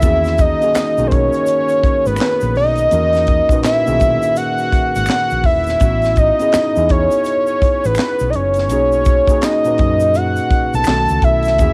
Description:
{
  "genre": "R&B, neo-soul",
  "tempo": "83 BPM",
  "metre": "4/4",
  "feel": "swing 62% on 16ths",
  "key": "unclear",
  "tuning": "A4 = 440 Hz",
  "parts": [
    { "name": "fat analog lead", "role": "melody", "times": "0.0-11.7 s", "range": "B4 to A5", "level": "-18 LUFS", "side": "equal", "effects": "chorus, cassette tape, plate reverb" },
    { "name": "tine electric piano", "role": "accompaniment", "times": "0.0-11.7 s", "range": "A#2 to B4", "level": "-24 LUFS", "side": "equal", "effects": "plate reverb" },
    { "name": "hollow-body short-scale fingered electric bass", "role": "bass", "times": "0.0-11.7 s", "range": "E1 to F#2", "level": "-22 LUFS", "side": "equal", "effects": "none" },
    { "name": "tight funk drum kit", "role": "drums", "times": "0.0-11.7 s", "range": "handclaps, hi-hat, kick drum, snare drum", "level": "-20 LUFS", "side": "equal", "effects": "cassette tape" },
    { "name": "tube shaker and finger snaps", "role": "percussion", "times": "0.0-11.7 s", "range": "none", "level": "-36 LUFS", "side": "equal", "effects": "none" }
  ],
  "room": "light reverb",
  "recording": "home recording on cassette",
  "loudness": "-15 LUFS",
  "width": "mono",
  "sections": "0.0-11.7 A section",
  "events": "none",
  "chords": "0.0 Emaj9#11; 5.8 A6; 8.7 Bmaj9; 10.9 B9"
}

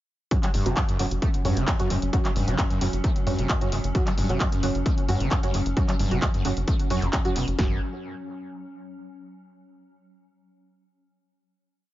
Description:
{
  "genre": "driving peak-time techno",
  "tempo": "132 BPM",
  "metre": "4/4",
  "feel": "straight",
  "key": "unclear",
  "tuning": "A4 = 441 Hz",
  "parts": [
    { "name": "screaming distorted acid line", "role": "riff", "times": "0.3-7.8 s", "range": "E2 to A3", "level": "-30 LUFS", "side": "equal", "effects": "distortion, lush chorus, sidechain pumping, analog delay" },
    { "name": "filtered dub chord stab", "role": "stabs", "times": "0.3-7.8 s", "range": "F#3 to F#4", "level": "-32 LUFS", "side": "right 3 dB", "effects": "ensemble chorus, vintage 12-bit sampler grit, sidechain pumping, analog delay" },
    { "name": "swarming drone", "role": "drone", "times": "1.2-7.6 s", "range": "F#3 to C#4", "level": "-34 LUFS", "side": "equal", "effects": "built-in reverb, sidechain pumping" },
    { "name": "punchy analog drum machine", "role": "drums", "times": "0.3-7.6 s", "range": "handclaps, hi-hat", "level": "-32 LUFS", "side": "equal", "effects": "dub echo" },
    { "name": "techno drum kit", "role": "drums", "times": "0.3-7.7 s", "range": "kick drum, snare drum", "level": "-25 LUFS", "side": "equal", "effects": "overdrive" },
    { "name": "tight sequencer bass", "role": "bass", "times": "0.5-7.8 s", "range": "F#1 to F#2", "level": "-28 LUFS", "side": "equal", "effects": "sidechain pumping" }
  ],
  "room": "light reverb",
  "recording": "echo-heavy mix, nothing above 7.5 kHz",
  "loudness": "-22 LUFS",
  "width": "side -15 dB against mid",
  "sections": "0.3-7.6 groove; 7.6-9.4 final chord",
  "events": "none",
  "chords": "0.3 F#5"
}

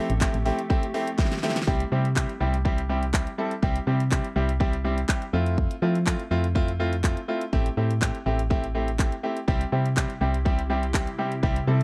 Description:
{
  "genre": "dance-pop",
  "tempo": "123 BPM",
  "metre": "4/4",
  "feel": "straight",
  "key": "C major",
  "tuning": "A4 = 440 Hz",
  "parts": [
    { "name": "bright concert grand piano", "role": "accompaniment", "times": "0.0-11.8 s", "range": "G3 to A4", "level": "-30 LUFS", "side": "equal", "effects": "sidechain pumping" },
    { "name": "glassy FM pad", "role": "sustained chords", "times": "0.0-1.7, 10.1-11.8 s", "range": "C3 to A4", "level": "-37 LUFS", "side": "equal", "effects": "none" },
    { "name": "solid FM bass", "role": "bass", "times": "0.1-11.8 s", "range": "A1 to F3", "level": "-28 LUFS", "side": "equal", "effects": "sidechain pumping" },
    { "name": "pop drum kit", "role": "drums", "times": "0.1-11.8 s", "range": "handclaps, hi-hat, kick drum, snare drum", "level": "-28 LUFS", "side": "equal", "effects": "none" },
    { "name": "group handclap", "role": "percussion", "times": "0.2-1.3 s", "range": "none", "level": "-42 LUFS", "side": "equal", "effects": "none" }
  ],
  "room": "digital ambience",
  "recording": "dry, close 1970s-style studio recording",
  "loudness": "-25 LUFS",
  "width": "mono",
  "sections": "0.0-1.7 A section; 1.7-11.8 B section",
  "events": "drum fill 1.2-1.7",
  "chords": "0.0 Am7; 1.7 C; 5.3 Fmaj7; 7.5 Am7; 9.5 C"
}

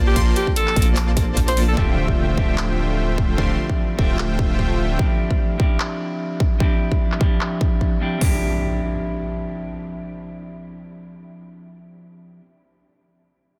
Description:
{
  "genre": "future bass",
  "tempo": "149 BPM",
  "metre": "4/4",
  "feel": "swing 55% on 16ths, half-time",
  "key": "D minor",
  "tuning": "A4 = 440 Hz",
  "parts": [
    { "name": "clean electric guitar", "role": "accompaniment", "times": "0.0-12.5 s", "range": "F3 to E5", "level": "-29 LUFS", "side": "equal", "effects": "spring reverb, sidechain pumping, dub echo" },
    { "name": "unison pluck", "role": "arpeggios", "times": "0.0-1.8 s", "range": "A5 to C6", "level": "-39 LUFS", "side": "equal", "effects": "none" },
    { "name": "soft supersaw", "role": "riff", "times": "0.0-5.0 s", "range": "D3 to C6", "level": "-28 LUFS", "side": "equal", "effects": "sidechain pumping, dub echo" },
    { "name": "saturated sub bass", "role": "bass", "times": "0.0-5.0 s", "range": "D1 to Bb1", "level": "-24 LUFS", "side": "equal", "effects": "sidechain pumping" },
    { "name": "bright alto saxophone", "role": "melody", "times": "0.1-1.8 s", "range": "G4 to C5", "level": "-28 LUFS", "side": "equal", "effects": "sidechain pumping, digital delay" },
    { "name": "big-room dance drum kit", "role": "drums", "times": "0.2-8.3 s", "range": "hi-hat, kick drum", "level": "-22 LUFS", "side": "equal", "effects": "none" },
    { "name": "trap drum kit", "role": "drums", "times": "0.2-7.5 s", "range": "handclaps, hi-hat", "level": "-33 LUFS", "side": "equal", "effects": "low-pass filter on hats, low-pass filter on snare" },
    { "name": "impact", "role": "sound effects", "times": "1.8-3.4, 8.2-12.5 s", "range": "none", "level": "-31 LUFS", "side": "equal", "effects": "none" }
  ],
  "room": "digital ambience",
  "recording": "dense, heavily limited modern master",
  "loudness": "-20 LUFS",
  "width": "mono",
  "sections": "0.0-1.8 A section; 1.8-8.2 B section; 8.2-11.4 C section",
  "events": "drop 0.0-1.8; impact 1.8-3.4",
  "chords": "0.0 Bbmaj9; 1.8 Dm11"
}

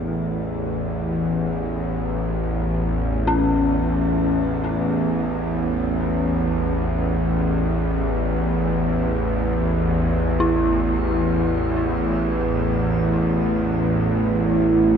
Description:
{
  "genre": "dark ambient drone",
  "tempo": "free time",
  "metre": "none",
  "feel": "none",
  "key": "A major",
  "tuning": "A4 = 440 Hz",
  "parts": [
    { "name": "dark detuned synth bell", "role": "arpeggios", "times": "0.0-15.0 s", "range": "C#4 to A4", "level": "-26 LUFS", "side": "left 2 dB", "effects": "chorus, tape echo, shimmer reverb" },
    { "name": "bowed-like drone", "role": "drone", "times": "0.0-15.0 s", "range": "A1 to E2", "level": "-20 LUFS", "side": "equal", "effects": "built-in reverb" },
    { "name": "dark analog pad", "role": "sustained chords", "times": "12.1-15.0 s", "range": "A3 to C#5", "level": "-22 LUFS", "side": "right 2 dB", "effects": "chorus, phaser" }
  ],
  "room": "wet cathedral reverb, RT60 7.1 s",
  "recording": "dark, warm production",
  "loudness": "-19 LUFS",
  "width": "side -7 dB against mid",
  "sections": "0.0-15.0 A section",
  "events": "none",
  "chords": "0.0 A"
}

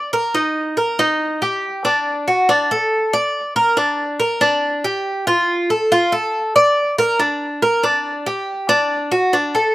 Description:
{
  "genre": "latin",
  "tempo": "140 BPM",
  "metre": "4/4",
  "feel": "straight",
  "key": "unclear",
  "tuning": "A4 = 439 Hz",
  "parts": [
    { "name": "Cuban tres", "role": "solo", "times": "0.0-9.7 s", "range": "D4 to D5", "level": "-15 LUFS", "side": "equal", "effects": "none" }
  ],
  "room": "little or no reverb",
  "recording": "recorded outdoors, with no room sound",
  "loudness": "-15 LUFS",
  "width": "side -17 dB against mid",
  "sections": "0.0-9.7 A section",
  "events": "none",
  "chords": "none"
}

